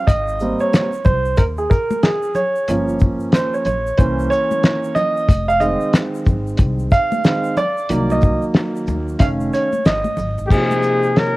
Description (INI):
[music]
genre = hip hop, jazz-hop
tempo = 92 BPM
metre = 4/4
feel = swing 63% on 16ths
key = unclear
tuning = A4 = 435 Hz
[part]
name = dark baby grand piano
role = accompaniment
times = 0.0-11.4 s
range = C3 to F5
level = -18 LUFS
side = right 2 dB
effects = cassette tape
[part]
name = upright bass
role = bass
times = 0.1-10.5 s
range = F1 to Eb2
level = -24 LUFS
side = left 1 dB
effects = none
[part]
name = cloth-damped thuddy drum kit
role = drums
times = 0.1-11.4 s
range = crash cymbal, hi-hat, kick drum, shaker, snare drum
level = -15 LUFS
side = left 1 dB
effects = vintage 12-bit sampler grit, cassette tape
[part]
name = egg shaker and congas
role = percussion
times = 0.1-11.4 s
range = none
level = -28 LUFS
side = left 2 dB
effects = none
[part]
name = breathy trumpet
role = melody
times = 10.5-11.4 s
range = G4 to Bb4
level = -18 LUFS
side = left 2 dB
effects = cassette tape
[part]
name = hollow concert flute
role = second line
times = 10.5-11.4 s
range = A4 to Db5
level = -26 LUFS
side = left 4 dB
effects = cassette tape
[sound]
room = light reverb, small room ambience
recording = home recording on cassette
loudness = -15 LUFS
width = side -19 dB against mid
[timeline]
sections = 0.0-10.5 A section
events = grand piano solo 0.0-10.5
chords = 0.1 Abmaj7; 2.7 Gm7b5; 4.0 C7b9; 5.3 Fm7; 7.9 Cm7b5; 9.2 F7alt; 10.5 Bbm9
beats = | 0.07 0.73 1.38 2.03 | 2.68 3.33 3.99 4.64 | 5.29 5.94 6.59 7.25 | 7.90 8.55 9.20 9.86 | 10.51 11.16